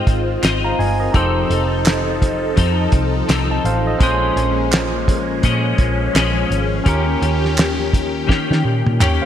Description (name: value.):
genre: indie pop, bedroom pop.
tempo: 84 BPM.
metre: 4/4.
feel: swing 60% on 16ths.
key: unclear.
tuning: A4 = 440 Hz.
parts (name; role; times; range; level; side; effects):
barky tine electric piano; accompaniment; 0.0-9.3 s; C4 to Bb5; -23 LUFS; right 2 dB; overdrive.
clean electric guitar; accompaniment; 0.0-9.3 s; Bb2 to Eb5; -22 LUFS; left 6 dB; ensemble chorus, warbly pitch drift.
phased analog pad; sustained chords; 0.0-9.3 s; Eb3 to A4; -24 LUFS; left 1 dB; phaser, chorus.
vintage muted picked electric bass; bass; 0.1-9.2 s; F1 to Eb3; -20 LUFS; equal; none.
cloth-damped thuddy drum kit; drums; 0.1-9.2 s; hi-hat, kick drum, snare drum, toms; -19 LUFS; equal; none.
group handclap; percussion; 0.4-9.2 s; none; -26 LUFS; right 4 dB; none.
room: moderate lush hall reverb, RT60 1.9 s.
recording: bright 1980s-style digital production.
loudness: -15 LUFS.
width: side -10 dB against mid.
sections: 0.0-9.3 A section.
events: drum fill 8.3-9.3.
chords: 0.0 Ab6; 1.1 F7; 4.0 Bbm7; 6.9 Eb7.